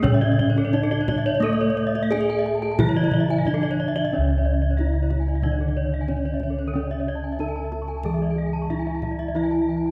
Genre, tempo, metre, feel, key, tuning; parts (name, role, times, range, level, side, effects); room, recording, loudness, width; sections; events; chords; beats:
Balinese gamelan; 91 BPM; 4/4; uneven beats; C# pelog; A4 = 442 Hz
gamelan-type bronze metallophone; melody; 0.0-9.9 s; A3 to A4; -29 LUFS; equal
gamelan-type bronze metallophone; accompaniment; 0.0-9.9 s; C#3 to A3; -32 LUFS; equal
gamelan-type bronze metallophone; arpeggios; 0.0-9.9 s; A4 to A5; -32 LUFS; equal
gamelan-type bronze metallophone; arpeggios; 0.0-9.8 s; A4 to C#6; -34 LUFS; equal
gamelan-type bossed gongs; bass; 0.0-9.9 s; C#2 to A4; -27 LUFS; equal
kendang; percussion; 0.0-9.8 s; -30 LUFS; equal
wet concert hall reverb, RT60 2.3 s; recorded in a church or concert hall; -23 LUFS; mono
0.0-4.1 A section; 4.1-9.9 B section
0.04 0.75 | 1.44 2.13 2.80 3.47 | 4.13 4.78 5.43 6.09 | 6.74 7.39 8.05 8.70 | 9.35